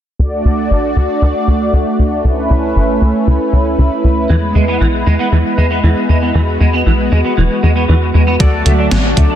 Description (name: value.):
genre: synthwave.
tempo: 117 BPM.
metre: 4/4.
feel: straight.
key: unclear.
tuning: A4 = 441 Hz.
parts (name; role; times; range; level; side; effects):
warm analog pad; sustained chords; 0.2-9.4 s; D3 to D5; -16 LUFS; equal; chorus, sidechain pumping.
tight sequencer bass; bass; 0.2-9.3 s; E1 to E2; -12 LUFS; equal; tube saturation.
semi-hollow electric guitar; arpeggios; 4.3-9.4 s; E3 to D4; -17 LUFS; right 2 dB; ensemble chorus, low-pass filter, ping-pong delay.
chorused polysynth; stabs; 8.4-9.4 s; D4 to D5; -19 LUFS; left 3 dB; ping-pong delay.
electronic kick drum; drums; 8.4-9.3 s; none; -13 LUFS; equal; none.
gated 80s digital drum machine; drums; 8.4-9.3 s; hi-hat, snare drum; -17 LUFS; equal; gated reverb, gated reverb snare.
room: moderate digital room reverb, RT60 1.3 s.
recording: dense, heavily limited modern master.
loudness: -10 LUFS.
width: side -10 dB against mid.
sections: 0.2-8.4 A section.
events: filter sweep on analog synth bass 0.2-8.4.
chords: 0.2 D; 2.2 Aadd9; 4.3 E; 8.4 D.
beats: | 0.20 0.71 1.22 1.73 | 2.25 2.76 3.27 3.79 | 4.30 4.81 5.32 5.84 | 6.35 6.86 7.38 7.89 | 8.40 8.91.